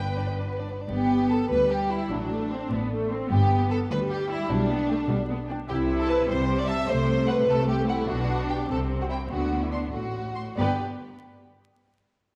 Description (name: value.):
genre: quick classical-period movement for string orchestra.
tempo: 99 BPM (dotted quarters).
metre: 6/8.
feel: straight.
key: G major.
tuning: A4 = 443 Hz.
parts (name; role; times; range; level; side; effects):
rich studio violin section; melody; 0.0-10.8 s; D5 to C6; -41 LUFS; equal; none.
rich studio violin section; second line; 0.0-10.8 s; B3 to E5; -30 LUFS; equal; none.
clear studio viola section; accompaniment; 0.0-10.8 s; F#3 to B4; -31 LUFS; equal; none.
clear studio double bass section; bass; 0.0-10.8 s; G1 to D2; -33 LUFS; equal; none.
rich studio cello section; bass; 0.0-10.8 s; D2 to D3; -34 LUFS; equal; none.
room: wet scoring stage reverb, RT60 1.7 s.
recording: vinyl crackle.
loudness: -26 LUFS.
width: mono.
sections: 0.9-10.6 A section; 10.6-11.8 B section.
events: none.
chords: 0.0 G; 2.1 D5/A; 3.3 G; 4.5 G/B; 5.7 Am7/C; 6.9 C5; 8.1 G/B; 8.7 N.C.; 9.3 D; 10.6 G.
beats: 0.27 | 0.89 1.50 | 2.11 2.71 | 3.31 3.90 | 4.50 5.09 | 5.69 6.29 | 6.88 7.48 | 8.09 8.70 | 9.31 9.93 | 10.58.